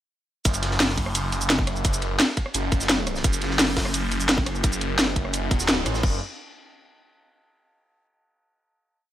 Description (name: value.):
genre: dark technical drum and bass.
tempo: 172 BPM.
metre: 4/4.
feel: straight.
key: F# minor.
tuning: A4 = 440 Hz.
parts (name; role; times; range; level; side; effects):
phased detuned saw bass; bass; 0.5-6.2 s; E1 to A1; -26 LUFS; equal; phaser, overdrive.
crunchy breakbeat drum kit; drums; 0.5-6.0 s; hi-hat, ride cymbal, snare drum; -31 LUFS; equal; high-pass filter on cymbals, high-pass filter on hats, high-pass filter on snare, high-pass filter on room.
drum and bass drum kit; drums; 0.5-6.1 s; crash cymbal, hi-hat, rim click, shaker, snare drum; -23 LUFS; equal; none.
electronic kick drum; drums; 0.5-6.1 s; none; -23 LUFS; equal; none.
room: small room ambience.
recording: none.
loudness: -21 LUFS.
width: side -12 dB against mid.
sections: 0.5-6.0 drop; 6.0-7.4 final note.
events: drop 0.5-6.0; band accent 5.7.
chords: none.